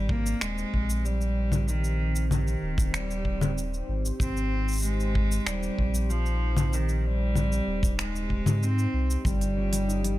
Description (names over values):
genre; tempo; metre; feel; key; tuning
folktronica; 95 BPM; 4/4; straight; Ab major; A4 = 439 Hz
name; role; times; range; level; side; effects
rich cello; melody; 0.0-10.2 s; Eb3 to C4; -31 LUFS; equal; ping-pong delay
warm analog pad; sustained chords; 0.0-10.2 s; C4 to Db5; -38 LUFS; right 1 dB; chorus
warm sub bass; bass; 0.0-10.2 s; Eb1 to Ab2; -27 LUFS; equal; none
kick drum; drums; 0.1-9.4 s; none; -28 LUFS; equal; none
organic electronic drum kit; drums; 0.3-10.2 s; cabasa, congas, finger snaps, hi-hat; -30 LUFS; left 2 dB; none
concert harp; arpeggios; 9.3-10.2 s; G3 to Eb4; -33 LUFS; left 6 dB; ping-pong delay
room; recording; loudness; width
studio reverb; none; -24 LUFS; side -16 dB against mid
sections
0.0-10.2 A section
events
none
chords
0.0 Abmaj7; 9.3 Eb7